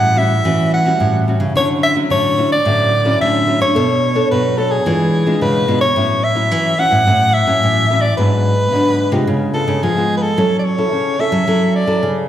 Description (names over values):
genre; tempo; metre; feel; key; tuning
samba and choro; 109 BPM; 4/4; straight; A major; A4 = 440 Hz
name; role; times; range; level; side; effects
breathy soprano saxophone; melody; 0.0-12.1 s; G#4 to F#5; -16 LUFS; equal; none
nylon-string guitar; accompaniment; 0.0-12.3 s; G#2 to C#5; -19 LUFS; left 1 dB; none
nylon-string guitar; bass; 0.0-12.3 s; G#2 to F#3; -17 LUFS; equal; none
room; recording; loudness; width
wet recital hall reverb, RT60 1.4 s; heard from further back in the room; -13 LUFS; side -11 dB against mid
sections
0.0-6.0 A section; 6.0-12.3 B section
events
none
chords
0.0 A6; 1.6 Dmaj9; 3.8 Bm9; 4.9 E7b9; 6.0 A6; 8.2 G#m7b5; 9.3 C#7; 10.4 F#m7